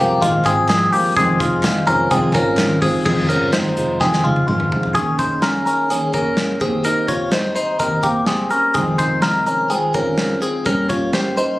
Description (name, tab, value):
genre	jangly indie pop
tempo	126 BPM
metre	4/4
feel	straight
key	F minor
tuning	A4 = 440 Hz
part	fingerpicked steel-string acoustic guitar	accompaniment	0.0-11.6 s	F2 to Ab4	-21 LUFS	right 1 dB	none
part	direct-recorded clean electric guitar	arpeggios	0.0-11.6 s	Ab3 to Db5	-17 LUFS	left 1 dB	phaser, slapback echo
part	vintage muted picked electric bass	bass	0.0-4.9 s	F1 to C2	-25 LUFS	equal	none
part	big rock drum kit	drums	0.2-11.5 s	crash cymbal, hi-hat, kick drum, snare drum, toms	-23 LUFS	equal	none
part	group handclap	percussion	0.4-2.7 s	none	-32 LUFS	right 2 dB	none
room	light reverb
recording	recorded on a phone in the room, club reverb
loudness	-15 LUFS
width	side -18 dB against mid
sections	0.0-3.1 A section; 3.1-5.0 B section; 5.0-11.6 C section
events	drum fill 4.0-5.0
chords	0.0 Ab6; 1.2 Fm7; 5.0 Eb7sus4; 6.6 Cm7/Eb; 8.8 Fm7; 10.7 Gdim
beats	0.22 0.69 | 1.17 1.64 2.11 2.58 | 3.06 3.53 4.00 4.48 | 4.95 5.43 5.90 6.38 | 6.85 7.33 7.80 8.28 | 8.76 9.23 9.71 10.18 | 10.66 11.14